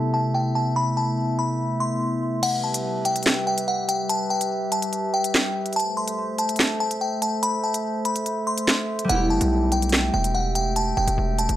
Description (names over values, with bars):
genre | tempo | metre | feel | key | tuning
hip hop, drill | 144 BPM | 4/4 | half-time | E minor | A4 = 437 Hz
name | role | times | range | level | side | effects
glassy synth bell | melody | 0.0-11.6 s | F#5 to C6 | -25 LUFS | left 1 dB | chorus, low-pass filter
concert harp | accompaniment | 0.0-2.5, 9.0-11.6 s | C3 to A4 | -27 LUFS | equal | low-pass filter
glass harmonica | sustained chords | 0.0-11.6 s | G3 to G5 | -28 LUFS | equal | low-pass filter
drill drum kit | drums | 2.4-11.6 s | crash cymbal, handclaps, hi-hat, snare drum | -23 LUFS | equal | none
distorted 808-style bass | bass | 9.1-11.6 s | E1 to B1 | -24 LUFS | equal | distortion
room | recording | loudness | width
digital ambience | dry, gritty hardware recording | -21 LUFS | side -13 dB against mid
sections
0.0-2.4 A section; 2.4-11.6 B section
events
filter sweep 0.0-2.4; kick muted 2.4-9.1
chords
0.0 Amadd9; 2.4 Em; 5.8 Am; 9.1 Em